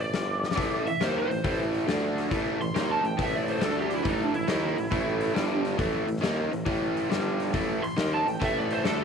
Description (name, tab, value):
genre	blues rock power trio and southern rock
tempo	138 BPM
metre	4/4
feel	swing 67% on 8ths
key	A minor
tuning	A4 = 440 Hz
part	lead guitar through a small cranked amp	melody	0.0-9.0 s	D4 to C6	-30 LUFS	right 2 dB	overdrive
part	warm tuba	bass	0.0-9.0 s	G1 to D#2	-32 LUFS	right 1 dB	none
part	huge arena drum kit	drums	0.1-9.0 s	hi-hat, kick drum, snare drum	-32 LUFS	left 4 dB	none
part	overdriven electric guitar	riff	0.6-9.0 s	G2 to D#4	-28 LUFS	equal	none
room	light reverb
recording	1960s-style stereo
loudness	-25 LUFS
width	side -6 dB against mid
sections	0.0-9.0 A section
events	drum fill 0.3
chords	0.1 G5; 0.6 Am; 1.9 D5; 2.3 A5; 3.6 D5; 4.0 A5; 5.4 G5; 5.8 A5; 7.1 G5; 7.5 A5